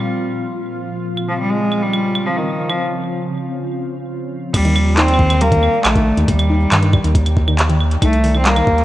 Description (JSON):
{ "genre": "IDM", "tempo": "138 BPM", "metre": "4/4", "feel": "straight", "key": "Eb lydian", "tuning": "A4 = 440 Hz", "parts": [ { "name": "rich cello", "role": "melody", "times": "0.0-8.8 s", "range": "Eb3 to C4", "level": "-18 LUFS", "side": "equal", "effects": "digital delay" }, { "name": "glassy FM pad", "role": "sustained chords", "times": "0.0-8.8 s", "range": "Bb2 to Bb5", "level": "-25 LUFS", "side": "equal", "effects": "ensemble chorus, built-in reverb" }, { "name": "bubbling stepped-filter texture", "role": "texture", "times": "0.0-2.8 s", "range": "F4 to F5", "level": "-33 LUFS", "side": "equal", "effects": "chorus, built-in reverb" }, { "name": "electro analog drum machine", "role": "drums", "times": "1.2-8.8 s", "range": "claves, crash cymbal, handclaps, hi-hat", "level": "-20 LUFS", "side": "right 1 dB", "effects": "small room ambience" }, { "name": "round analog bass", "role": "bass", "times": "4.5-8.8 s", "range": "Bb1 to G2", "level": "-16 LUFS", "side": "equal", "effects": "none" }, { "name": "electronic kick drum", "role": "drums", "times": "4.5-8.8 s", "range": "none", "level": "-18 LUFS", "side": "equal", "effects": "small room ambience" }, { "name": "warbly dusty pluck", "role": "arpeggios", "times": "4.7-8.7 s", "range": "Eb3 to Eb4", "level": "-21 LUFS", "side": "left 1 dB", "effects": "chorus" } ], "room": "moderate lush hall reverb, RT60 2.0 s", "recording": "worn, warbling old tape, cassette tape, warbly pitch drift", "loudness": "-14 LUFS", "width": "side -14 dB against mid", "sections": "0.0-4.5 A section; 4.5-8.8 B section", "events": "break 2.8-4.5", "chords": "0.0 Fsus4; 1.1 Dbmaj7; 4.5 Ebmaj7; 8.0 Cm7", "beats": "0.20 0.63 | 1.06 1.50 1.93 2.37 | 2.80 3.24 3.67 4.11 | 4.54 4.98 5.41 5.85 | 6.28 6.72 7.15 7.59 | 8.02 8.46" }